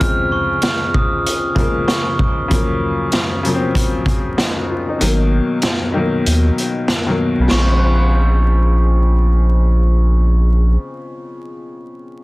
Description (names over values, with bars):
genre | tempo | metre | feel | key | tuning
hip hop, boom-bap hip-hop | 96 BPM | 4/4 | swing 60% on 16ths | Bb minor | A4 = 439 Hz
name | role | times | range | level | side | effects
glockenspiel with soft plastic mallets | melody | 0.0-2.2, 7.5-9.3 s | Db6 to F6 | -24 LUFS | right 1 dB | high-pass filter, low-pass filter, digital delay
clear upright piano | accompaniment | 0.0-12.2 s | Cb3 to Gb4 | -20 LUFS | left 2 dB | cassette tape, high-pass filter, low-pass filter
raw garage drum kit | drums | 0.0-7.7 s | china cymbal, hi-hat, kick drum, snare drum | -19 LUFS | equal | none
saturated sub bass | bass | 5.0-10.8 s | Ab1 to Eb2 | -13 LUFS | equal | none
room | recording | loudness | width
small room ambience | dense, heavily limited modern master, vinyl crackle | -14 LUFS | side -21 dB against mid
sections
0.0-7.5 A section; 7.5-10.0 B section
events
break 0.0-5.0; kick muted 5.0-7.5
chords
0.0 Bbm9; 2.5 Ebm13/Db; 5.0 Abm9; 7.5 Bbm9